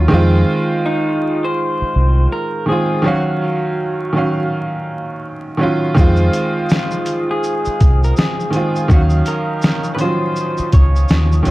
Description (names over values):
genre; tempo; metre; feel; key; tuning
lo-fi hip hop; 82 BPM; 4/4; swing 61% on 16ths; Eb dorian; A4 = 438 Hz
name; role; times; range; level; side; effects
bright upright piano; accompaniment; 0.0-11.5 s; Eb3 to F5; -18 LUFS; right 1 dB; cassette tape, low-pass filter
deep dub fingered electric bass; bass; 0.0-11.5 s; C2 to F2; -13 LUFS; equal; none
electric guitar through a small old amp; melody; 0.9-11.4 s; Eb4 to Db5; -22 LUFS; equal; low-pass filter
mellow hollow flute section; sustained chords; 6.0-11.5 s; Db4 to Eb6; -31 LUFS; left 2 dB; low-pass filter
lo-fi sampler-style drum kit; drums; 6.0-11.5 s; hi-hat, kick drum, shaker, snare drum; -15 LUFS; equal; none
room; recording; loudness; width
light reverb, digital ambience; dark, warm production, vinyl crackle; -14 LUFS; side -18 dB against mid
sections
0.0-11.5 A section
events
break 3.0-6.0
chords
0.1 Fm7; 3.0 Ebm9; 6.0 Fm7; 8.9 Ebm9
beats
| 0.11 0.85 1.58 2.31 | 3.04 3.77 4.50 5.24 | 5.97 6.70 7.43 8.16 | 8.89 9.63 10.36 11.09